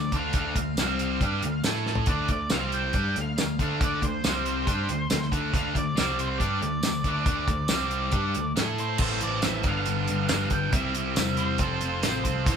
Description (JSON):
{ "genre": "classic rock", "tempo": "138 BPM", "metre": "4/4", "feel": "straight", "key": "D minor", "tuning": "A4 = 440 Hz", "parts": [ { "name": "octave-fuzz lead guitar", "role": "melody", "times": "0.0-12.6 s", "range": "C5 to G5", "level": "-32 LUFS", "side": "equal", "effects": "distortion" }, { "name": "overdriven electric guitar", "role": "riff", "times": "0.0-12.6 s", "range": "G2 to A4", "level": "-29 LUFS", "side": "right 4 dB", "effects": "none" }, { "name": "sludgy distorted guitar", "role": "riff", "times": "0.0-12.6 s", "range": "F2 to A4", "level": "-32 LUFS", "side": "left 8 dB", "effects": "overdrive" }, { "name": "overdriven picked electric bass", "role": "bass", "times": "0.0-12.6 s", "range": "F1 to A2", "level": "-33 LUFS", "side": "right 1 dB", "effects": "none" }, { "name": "damped 70s drum kit", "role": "drums", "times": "0.1-12.6 s", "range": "crash cymbal, hi-hat, kick drum, snare drum, tambourine, toms", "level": "-27 LUFS", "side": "equal", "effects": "none" } ], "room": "moderate studio reverb, RT60 0.7 s", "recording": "band playing live in one room", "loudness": "-24 LUFS", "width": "side -7 dB against mid", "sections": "0.0-9.0 A section; 9.0-12.6 B section", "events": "drum fill 1.8", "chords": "0.0 Dm; 0.8 C5; 1.2 Dm; 1.6 A5; 2.1 D5; 2.5 C5; 2.9 Dm; 4.2 C5; 4.7 D5; 6.0 C5; 6.4 D5; 7.7 C5; 8.1 D5; 8.6 A5; 9.0 Am; 9.6 G; 10.7 C; 11.6 F" }